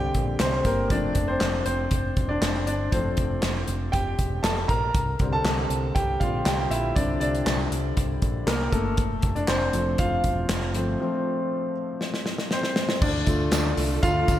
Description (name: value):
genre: piano-driven pop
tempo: 119 BPM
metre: 4/4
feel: straight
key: F major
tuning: A4 = 440 Hz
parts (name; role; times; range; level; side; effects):
- clear grand piano; accompaniment; 0.0-14.4 s; D3 to Bb5; -26 LUFS; left 1 dB; slapback echo
- deep dub picked electric bass; bass; 0.0-14.4 s; E1 to D2; -28 LUFS; equal; none
- natural country drum kit; drums; 0.1-14.4 s; crash cymbal, handclaps, hi-hat, kick drum, snare drum; -26 LUFS; equal; none
- warm studio string section; sustained chords; 13.0-14.4 s; D3 to F4; -32 LUFS; right 4 dB; none
- tambourine; percussion; 13.3-14.4 s; none; -39 LUFS; right 7 dB; none
room: moderate lush hall reverb, RT60 1.9 s, studio reverb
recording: big arena sound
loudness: -22 LUFS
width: side -12 dB against mid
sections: 0.0-13.0 A section; 13.0-14.4 B section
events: grand piano solo 0.0-13.0, 13.0-14.4; break 11.0-13.0; drum fill 12.0-13.0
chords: 0.0 Csus2; 0.9 F; 4.9 Csus2; 9.0 F; 13.0 Dm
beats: 0.40 | 0.91 1.41 1.92 2.42 | 2.92 3.43 3.93 4.44 | 4.94 5.45 5.95 6.46 | 6.96 7.46 7.97 8.47 | 8.98 9.48 9.99 10.50 | 11.00 11.51 12.01 12.52 | 13.02 13.53 14.03